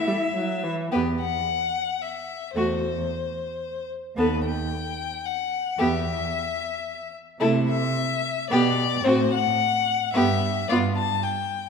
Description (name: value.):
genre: quick classical-period movement for string quartet.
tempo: 111 BPM.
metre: 3/4.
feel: straight.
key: E minor.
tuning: A4 = 442 Hz.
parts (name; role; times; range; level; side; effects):
rich violin; melody; 0.0-11.7 s; A4 to A5; -26 LUFS; left 8 dB; none.
rich violin; second line; 0.0-10.9 s; E4 to E5; -28 LUFS; left 3 dB; none.
warm cello; bass; 0.0-11.2 s; D#2 to E4; -29 LUFS; right 4 dB; none.
rich viola; accompaniment; 0.1-10.9 s; E3 to C4; -26 LUFS; right 3 dB; none.
room: wet concert hall reverb, RT60 1.9 s.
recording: none.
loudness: -22 LUFS.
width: side -6 dB against mid.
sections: 0.9-11.7 A section.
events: none.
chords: 0.0 N.C.; 0.9 E5; 2.6 F#m7b5/E (rootless); 4.2 B/D#; 5.8 E5; 7.4 Am/C; 8.5 G/B; 9.0 F#dim/A; 10.1 Em/G.